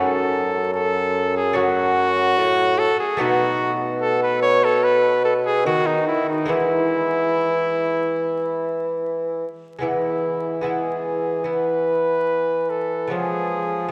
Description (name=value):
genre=classical, renaissance-style consort dance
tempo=73 BPM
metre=4/4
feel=straight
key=E major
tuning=A4 = 440 Hz
part: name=warm cornet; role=melody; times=0.0-13.9 s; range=D#4 to C#5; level=-24 LUFS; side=equal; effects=none
part: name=lute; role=accompaniment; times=0.0-13.9 s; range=F#2 to F#4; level=-29 LUFS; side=equal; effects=none
part: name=warm bassoon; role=bass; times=0.0-13.9 s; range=F#2 to E#3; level=-24 LUFS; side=equal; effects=none
room=wet church reverb, RT60 3.5 s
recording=vinyl crackle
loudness=-21 LUFS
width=mono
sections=0.0-9.8 A section; 9.8-13.9 B section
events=none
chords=0.0 F#m; 3.2 B7; 6.5 E; 13.1 C#7/E#